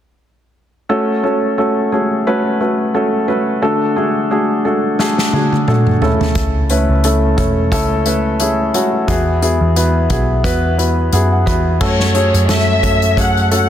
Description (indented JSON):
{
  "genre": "piano-driven pop",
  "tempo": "88 BPM",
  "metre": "4/4",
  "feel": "swing 56% on 16ths",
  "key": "unclear",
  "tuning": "A4 = 439 Hz",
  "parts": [
    { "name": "felt-muted upright piano", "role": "accompaniment", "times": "0.9-13.7 s", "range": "C#3 to B5", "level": "-15 LUFS", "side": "equal", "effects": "none" },
    { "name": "unplugged drum kit", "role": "drums", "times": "5.0-13.7 s", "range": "crash cymbal, hi-hat, kick drum, snare drum, toms", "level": "-18 LUFS", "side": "equal", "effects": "none" },
    { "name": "vintage muted picked electric bass", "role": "bass", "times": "6.4-13.7 s", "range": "E1 to F#2", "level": "-16 LUFS", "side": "equal", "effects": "none" },
    { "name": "dark studio violin section", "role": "melody", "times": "11.8-13.7 s", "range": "C#5 to F#5", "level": "-16 LUFS", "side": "left 2 dB", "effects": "none" }
  ],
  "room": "light reverb, studio reverb",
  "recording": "dense, heavily limited modern master",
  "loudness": "-12 LUFS",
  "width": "side -10 dB against mid",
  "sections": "0.9-11.8 A section; 11.8-13.7 B section",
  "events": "drum fill 5.0-6.4; felt piano fill 10.4-11.8",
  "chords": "0.9 F#m; 3.6 D; 6.0 A; 9.1 Eadd9; 11.8 F#m"
}